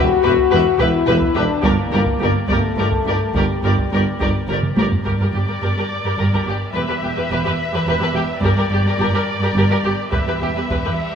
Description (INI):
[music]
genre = cinematic, epic orchestral film score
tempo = 71 BPM (dotted quarters)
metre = 6/8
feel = straight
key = unclear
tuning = A4 = 442 Hz
[part]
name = warm symphonic violin section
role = melody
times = 0.0-11.2 s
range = D5 to E5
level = -26 LUFS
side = left 2 dB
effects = none
[part]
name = rich symphonic violin section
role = second line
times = 0.0-10.9 s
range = G4 to B4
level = -24 LUFS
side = left 2 dB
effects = none
[part]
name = warm symphonic viola section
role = accompaniment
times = 0.0-11.2 s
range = G4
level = -27 LUFS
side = right 1 dB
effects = none
[part]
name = mellow French horn section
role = sustained chords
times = 0.0-11.2 s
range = G3 to B4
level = -22 LUFS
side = left 6 dB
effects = none
[part]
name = clear symphonic double bass section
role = bass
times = 0.0-10.8 s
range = E1 to G1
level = -24 LUFS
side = right 2 dB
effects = none
[part]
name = mellow tuba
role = bass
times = 0.0-4.9 s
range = E1 to G1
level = -24 LUFS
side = right 4 dB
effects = none
[part]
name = rich symphonic cello section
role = bass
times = 0.0-10.9 s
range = E2 to G2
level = -23 LUFS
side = right 2 dB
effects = none
[part]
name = solo taiko drums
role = drums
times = 0.4-11.2 s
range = none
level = -24 LUFS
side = equal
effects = none
[part]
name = reverse cymbal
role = sound effects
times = 10.8-11.2 s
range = none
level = -38 LUFS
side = equal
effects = none
[sound]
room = wet concert hall reverb, RT60 2.5 s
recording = small room ambience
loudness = -16 LUFS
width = side -7 dB against mid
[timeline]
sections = 0.0-5.1 A section; 5.1-11.2 B section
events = drum fill 4.6-5.1; reverse cymbal 10.8-11.2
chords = 0.0 Em; 1.6 Gm; 6.8 Em; 8.4 Gm; 10.1 Em